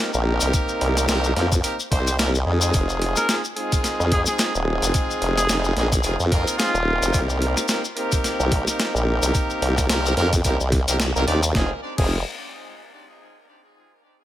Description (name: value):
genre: glitch hop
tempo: 109 BPM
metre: 4/4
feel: swing 57% on 16ths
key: F minor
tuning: A4 = 438 Hz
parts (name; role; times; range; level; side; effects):
- brilliant horn section; stabs; 0.0-12.2 s; Ab3 to D5; -25 LUFS; right 1 dB; sidechain pumping, tape echo
- formant-sweep wobble bass; bass; 0.1-12.2 s; Eb1 to F2; -21 LUFS; equal; chorus
- maracas; percussion; 0.1-11.5 s; none; -27 LUFS; left 4 dB; none
- boom bap sampler-style drum kit; drums; 0.4-12.1 s; crash cymbal, hi-hat, snare drum; -26 LUFS; equal; none
- electronic kick drum; drums; 0.5-12.1 s; none; -23 LUFS; equal; none
- warm trumpet; melody; 3.2-7.2 s; F4 to Bb4; -27 LUFS; equal; tape echo
room: studio reverb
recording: none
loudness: -18 LUFS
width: side -13 dB against mid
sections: 0.0-11.5 A section; 11.5-13.7 B section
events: drop 0.0-11.5; band accent 11.0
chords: 0.0 Cm7; 2.7 Fm7; 7.1 Cm7; 11.5 Fm7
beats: | 0.54 1.09 1.64 2.19 | 2.74 3.29 3.84 4.39 | 4.94 5.49 6.04 6.59 | 7.14 7.69 8.24 8.79 | 9.35 9.90 10.45 11.00 | 11.55 12.10